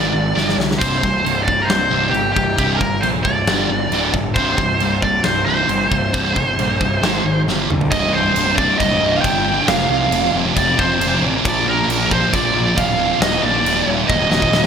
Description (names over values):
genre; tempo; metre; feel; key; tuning
heavy metal; 135 BPM; 4/4; straight; C minor; A4 = 440 Hz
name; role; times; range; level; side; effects
high-gain lead guitar; melody; 0.0-14.7 s; G4 to G5; -18 LUFS; right 1 dB; distortion
sludgy distorted guitar; riff; 0.0-14.7 s; C2 to Ab3; -19 LUFS; equal; overdrive
fuzz picked electric bass; bass; 0.0-14.7 s; C1 to C2; -23 LUFS; equal; overdrive
big rock drum kit; drums; 0.4-14.7 s; china cymbal, crash cymbal, kick drum, snare drum, splash cymbal, toms; -22 LUFS; equal; none
room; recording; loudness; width
moderate plate reverb, RT60 1.2 s; bright 1980s-style digital production; -14 LUFS; side -7 dB against mid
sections
0.0-7.9 A section; 7.9-14.7 B section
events
drum fill 0.4-0.8, 7.5-7.9, 14.1-14.7; half time 7.9-14.7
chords
0.4 G5; 0.8 C5; 3.5 G5; 3.9 D5; 4.4 C5; 7.0 Ab5; 7.5 G5; 7.9 C5; 9.7 F5; 11.4 Bb; 13.2 Eb5